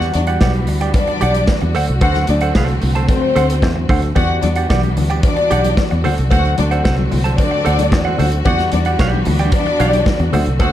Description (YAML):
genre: disco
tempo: 112 BPM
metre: 4/4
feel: straight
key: E minor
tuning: A4 = 440 Hz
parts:
  - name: semi-hollow electric guitar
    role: accompaniment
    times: 0.0-10.7 s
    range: G4 to A5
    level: -22 LUFS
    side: right 5 dB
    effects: none
  - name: clear studio string section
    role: sustained chords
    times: 0.0-10.7 s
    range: D3 to F#4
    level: -23 LUFS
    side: equal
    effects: none
  - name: fingered electric bass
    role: bass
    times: 0.0-10.7 s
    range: B1 to E2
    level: -17 LUFS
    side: equal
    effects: none
  - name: modern studio drum kit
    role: drums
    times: 0.0-10.7 s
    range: hi-hat, kick drum, snare drum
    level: -18 LUFS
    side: equal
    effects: none
  - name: dark studio string section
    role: second line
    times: 0.1-10.7 s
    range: C4 to F#5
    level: -20 LUFS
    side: left 3 dB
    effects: none
  - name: cowbell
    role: percussion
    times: 0.4-10.7 s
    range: none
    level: -32 LUFS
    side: left 4 dB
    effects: none
  - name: congas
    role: percussion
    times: 4.2-10.7 s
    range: none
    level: -25 LUFS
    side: left 6 dB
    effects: none
room: moderate large studio reverb, RT60 1.4 s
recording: dark, warm production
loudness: -13 LUFS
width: side -12 dB against mid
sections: 0.0-10.7 A section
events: none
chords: 0.0 Em9; 1.8 D7; 4.2 Em9; 6.0 D7; 8.5 Em9